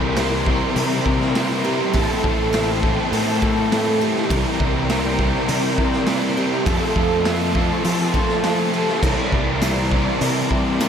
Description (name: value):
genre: rock, shoegaze and dream pop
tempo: 102 BPM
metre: 4/4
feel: straight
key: C mixolydian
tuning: A4 = 438 Hz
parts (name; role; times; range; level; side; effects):
- ensemble organ-string; sustained chords; 0.0-10.9 s; A4 to C6; -28 LUFS; equal; ensemble chorus
- picked twelve-string acoustic guitar; arpeggios; 0.0-10.5 s; G4 to C5; -27 LUFS; right 4 dB; ensemble chorus, ping-pong delay
- crunchy overdriven guitar; riff; 0.0-10.9 s; A2 to Bb4; -25 LUFS; right 6 dB; reverse reverb
- overdriven electric guitar; riff; 0.0-10.9 s; A2 to Bb4; -25 LUFS; left 8 dB; lush chorus
- raw garage guitar; riff; 0.0-10.9 s; A2 to Bb4; -27 LUFS; left 1 dB; overdrive
- fuzz fingered electric bass; bass; 0.0-10.9 s; A1 to F3; -24 LUFS; equal; overdrive
- raw garage drum kit; drums; 0.2-10.9 s; crash cymbal, hi-hat, kick drum, snare drum; -24 LUFS; equal; none
- tambourine; percussion; 9.6-10.9 s; none; -34 LUFS; left 12 dB; none
room: wet lush hall reverb, RT60 2.5 s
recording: dreamy mix soaked in reverb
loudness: -17 LUFS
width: side -8 dB against mid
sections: 0.0-10.9 A section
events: none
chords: 0.0 Csus2; 1.9 Am7; 4.3 Csus2; 6.7 Fmaj7; 9.0 Csus2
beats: 0.17 0.76 1.35 | 1.94 2.53 3.12 3.71 | 4.30 4.89 5.48 6.08 | 6.67 7.26 7.85 8.44 | 9.03 9.62 10.21 10.80